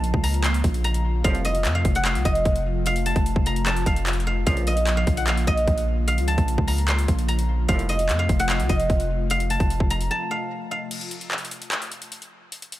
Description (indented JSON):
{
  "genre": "hip hop, trap",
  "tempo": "149 BPM",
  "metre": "4/4",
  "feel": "half-time",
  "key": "unclear",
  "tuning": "A4 = 442 Hz",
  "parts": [
    { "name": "guzheng", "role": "melody", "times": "0.0-12.4 s", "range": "Eb5 to C6", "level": "-26 LUFS", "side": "right 1 dB", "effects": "low-pass filter" },
    { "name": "airy breathy pad", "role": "sustained chords", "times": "0.0-10.9 s", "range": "C3 to F4", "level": "-31 LUFS", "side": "equal", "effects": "chorus, phaser" },
    { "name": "long sustained 808-style bass", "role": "bass", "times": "0.0-10.1 s", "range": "F1 to F2", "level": "-24 LUFS", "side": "equal", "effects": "none" },
    { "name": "trap drum kit", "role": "drums", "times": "0.0-12.8 s", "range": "crash cymbal, handclaps, hi-hat, kick drum", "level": "-25 LUFS", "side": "equal", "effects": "overdrive" },
    { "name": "clear brass ensemble", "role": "stabs", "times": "1.2-1.5, 4.5-4.8, 7.7-8.0 s", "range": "C2 to F3", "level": "-34 LUFS", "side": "right 4 dB", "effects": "tape echo" }
  ],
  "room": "digital ambience",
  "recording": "none",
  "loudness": "-20 LUFS",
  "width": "side -15 dB against mid",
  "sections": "0.0-10.9 A section; 10.9-12.8 B section",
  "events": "break 10.1-10.9, 10.9-12.8",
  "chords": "0.0 Bbm; 1.2 F; 4.5 Bbm; 7.7 F; 10.9 N.C."
}